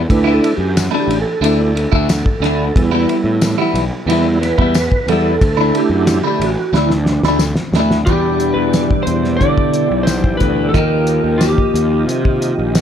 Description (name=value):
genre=psychedelic rock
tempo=90 BPM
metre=4/4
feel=straight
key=unclear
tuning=A4 = 440 Hz
part: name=fuzz picked electric bass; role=bass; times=0.0-12.8 s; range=A1 to D3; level=-18 LUFS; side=equal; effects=overdrive
part: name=tonewheel organ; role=sustained chords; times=0.1-12.8 s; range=G3 to D#5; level=-19 LUFS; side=right 4 dB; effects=slow rotary speaker, chorus vibrato
part: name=cloth-damped thuddy drum kit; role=drums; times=0.1-12.8 s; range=hi-hat, kick drum, ride cymbal, snare drum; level=-18 LUFS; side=equal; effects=none
part: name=clean electric guitar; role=riff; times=0.2-12.8 s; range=E2 to G4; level=-18 LUFS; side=left 1 dB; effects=phaser, double-tracked left and right
part: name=tambourine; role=percussion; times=0.8-12.8 s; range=none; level=-30 LUFS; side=left 11 dB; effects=none
part: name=electric slide guitar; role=melody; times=8.1-12.0 s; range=G4 to D5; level=-19 LUFS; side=left 2 dB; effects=tape echo
room=light reverb, small room ambience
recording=none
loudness=-12 LUFS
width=side -9 dB against mid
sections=0.0-8.1 A section; 8.1-12.8 B section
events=tonewheel organ solo 0.0-8.1; drum fill 6.7-8.1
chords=0.1 Dsus2; 2.8 Em; 5.4 Dsus2; 8.1 Em7; 10.7 D#add9